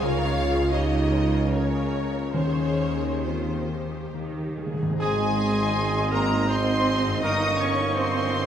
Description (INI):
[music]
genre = classical, slow romantic movement for symphony orchestra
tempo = 66-88 BPM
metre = 3/4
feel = rubato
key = Ab major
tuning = A4 = 441 Hz
[part]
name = rich symphonic violin section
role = melody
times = 0.0-8.5 s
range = C5 to Eb6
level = -31 LUFS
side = left 3 dB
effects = none
[part]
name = warm symphonic violin section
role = second line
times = 0.0-8.5 s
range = Ab4 to F5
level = -34 LUFS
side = left 1 dB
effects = none
[part]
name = warm symphonic viola section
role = accompaniment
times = 0.0-8.5 s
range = C4 to Db5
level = -33 LUFS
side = right 2 dB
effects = none
[part]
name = mellow French horn section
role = sustained chords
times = 0.0-7.5 s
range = Eb3 to F4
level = -29 LUFS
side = left 1 dB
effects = none
[part]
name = concert harp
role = arpeggios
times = 0.0-8.5 s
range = G2 to Eb6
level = -34 LUFS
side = left 6 dB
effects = none
[part]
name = rich symphonic cello section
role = bass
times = 0.0-8.5 s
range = Db3 to Eb4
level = -32 LUFS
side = right 2 dB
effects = none
[part]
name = warm symphonic double bass section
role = bass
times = 0.0-8.5 s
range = G1 to Eb2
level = -29 LUFS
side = right 2 dB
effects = none
[part]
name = warm tuba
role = bass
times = 0.0-8.5 s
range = G1 to Eb2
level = -31 LUFS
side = right 2 dB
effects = none
[part]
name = timpani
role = percussion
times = 2.3-5.0 s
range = Eb3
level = -30 LUFS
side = right 1 dB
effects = none
[part]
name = bright concert flute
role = second line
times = 5.0-8.5 s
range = C6 to Db6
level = -31 LUFS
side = left 2 dB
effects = none
[part]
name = bright oboe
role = second line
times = 5.0-8.5 s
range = Eb5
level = -33 LUFS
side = right 3 dB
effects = none
[part]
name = warm clarinet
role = second line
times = 5.0-8.5 s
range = Ab4 to Eb5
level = -32 LUFS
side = right 1 dB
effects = none
[part]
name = dark bassoon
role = accompaniment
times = 5.0-8.5 s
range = Ab3 to Bb3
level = -33 LUFS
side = right 1 dB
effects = none
[part]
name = mellow trumpet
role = stabs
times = 5.0-7.5 s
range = Ab4 to Bb4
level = -32 LUFS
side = equal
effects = none
[sound]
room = wet scoring stage reverb, RT60 1.7 s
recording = none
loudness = -22 LUFS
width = side -9 dB against mid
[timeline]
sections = 0.0-5.0 A section; 5.0-8.5 B section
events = timpani fill 4.1-5.0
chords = 0.0 Bbm/Db; 2.3 Ab/Eb; 4.1 Eb; 5.0 Ab; 7.2 Eb7/G